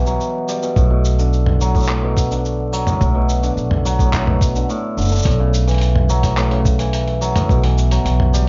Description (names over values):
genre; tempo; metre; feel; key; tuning
folktronica; 107 BPM; 4/4; straight; B minor; A4 = 440 Hz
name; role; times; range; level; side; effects
cimbalom; arpeggios; 0.0-8.5 s; A2 to G3; -23 LUFS; equal; delay, plate reverb
upright bass; bass; 0.0-8.5 s; F#1 to B1; -19 LUFS; equal; none
lo-fi sampler-style drum kit; drums; 0.1-8.5 s; handclaps, hi-hat, shaker, toms; -26 LUFS; equal; none
electronic kick drum; drums; 0.8-7.6 s; none; -20 LUFS; equal; none
room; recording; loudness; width
little or no reverb; dark, warm production, vinyl crackle, nothing above 7.5 kHz; -17 LUFS; mono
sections
0.0-8.5 A section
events
none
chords
0.0 Emadd9/B; 0.8 Bm7; 5.3 F#m7/B; 7.5 Emadd9/B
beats
0.21 | 0.77 1.33 1.89 2.45 | 3.01 3.57 4.13 4.69 | 5.25 5.81 6.37 6.93 | 7.50 8.06